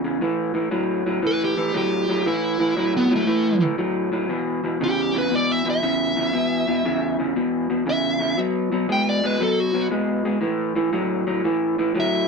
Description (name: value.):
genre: blues.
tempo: 117 BPM.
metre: 4/4.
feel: swing 67% on 8ths.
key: unclear.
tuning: A4 = 441 Hz.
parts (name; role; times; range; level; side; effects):
electric guitar through a small old amp; riff; 0.0-12.3 s; E2 to G#3; -21 LUFS; equal; none.
dark smooth lead guitar; melody; 1.3-12.3 s; A3 to G5; -22 LUFS; right 1 dB; overdrive.
room: wet studio reverb, RT60 0.5 s.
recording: band playing live in one room.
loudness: -20 LUFS.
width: side -4 dB against mid.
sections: 0.0-12.3 A section.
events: lead electric guitar solo 0.0-12.3.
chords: 0.2 A5; 4.3 E5; 8.4 B5; 10.4 A5.